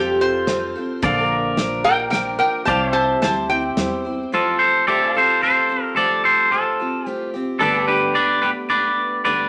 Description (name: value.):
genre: honky-tonk and classic country.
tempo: 110 BPM.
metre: 3/4.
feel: straight.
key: unclear.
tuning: A4 = 440 Hz.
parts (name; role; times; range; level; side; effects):
lap resonator guitar; second line; 0.0-4.3 s; G4 to A5; -22 LUFS; equal; none.
picked steel-string acoustic guitar; accompaniment; 0.0-9.5 s; G2 to C5; -28 LUFS; equal; none.
pedal steel guitar; sustained chords; 0.0-9.5 s; G4 to F5; -28 LUFS; equal; none.
upright bass; bass; 0.0-4.2 s; Bb1 to F2; -36 LUFS; equal; none.
damped 70s drum kit; drums; 0.5-3.9 s; hi-hat, kick drum, snare drum; -27 LUFS; equal; none.
twangy electric guitar; melody; 4.3-9.5 s; D4 to D5; -19 LUFS; equal; none.
room: wet studio reverb, RT60 0.8 s.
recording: vinyl crackle.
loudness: -19 LUFS.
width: mono.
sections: 0.0-4.3 A section; 4.3-9.5 B section.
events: resonator guitar played with a steel bar solo 0.0-4.3.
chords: 0.0 F; 1.0 Bb; 2.7 C; 4.3 Fadd9; 7.6 Gadd9.